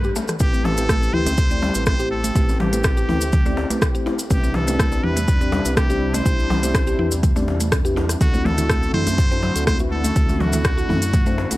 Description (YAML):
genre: afro house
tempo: 123 BPM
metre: 4/4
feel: straight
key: A minor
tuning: A4 = 438 Hz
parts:
  - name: trumpet with straight mute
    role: melody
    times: 0.0-11.6 s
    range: F#4 to C5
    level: -27 LUFS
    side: equal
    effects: analog delay
  - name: warm analog pad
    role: sustained chords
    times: 0.0-11.6 s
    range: C3 to B4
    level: -30 LUFS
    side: equal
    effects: chorus, sidechain pumping
  - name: mallet-like synth pluck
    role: arpeggios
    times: 0.0-11.6 s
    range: F#3 to G4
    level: -26 LUFS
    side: equal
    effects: chorus, vintage 12-bit sampler grit, sidechain pumping, analog delay
  - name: round analog bass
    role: bass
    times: 0.0-11.5 s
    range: A1 to G2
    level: -25 LUFS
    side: equal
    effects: sidechain pumping
  - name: cabasa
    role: percussion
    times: 0.0-11.6 s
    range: none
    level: -32 LUFS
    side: left 3 dB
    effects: none
  - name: afro-pop drum kit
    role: drums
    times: 0.2-11.6 s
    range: hi-hat, rim click, toms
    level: -24 LUFS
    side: equal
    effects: none
  - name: djembe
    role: percussion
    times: 0.2-11.6 s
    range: none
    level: -30 LUFS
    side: left 2 dB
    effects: none
  - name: mellow tine electric piano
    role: stabs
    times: 0.4-11.6 s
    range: A3 to D5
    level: -27 LUFS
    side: left 2 dB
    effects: slow stereo tremolo, sidechain pumping
  - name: electronic kick drum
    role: drums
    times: 0.4-11.2 s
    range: none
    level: -19 LUFS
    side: equal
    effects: none
  - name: congas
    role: percussion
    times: 8.2-11.2 s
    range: none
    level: -29 LUFS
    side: right 1 dB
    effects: none
room: studio ambience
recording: dry, gritty hardware recording, transformer saturation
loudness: -17 LUFS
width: side -17 dB against mid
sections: 0.4-11.6 A section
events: band accent 0.0; drum fill 0.2; drop 0.4-11.6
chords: 0.4 Am7; 4.3 Cmaj7; 8.2 D7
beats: | 0.40 0.89 1.38 1.87 | 2.35 2.84 3.33 3.82 | 4.31 4.79 5.28 5.77 | 6.26 6.75 7.23 7.72 | 8.21 8.70 9.18 9.67 | 10.16 10.65 11.14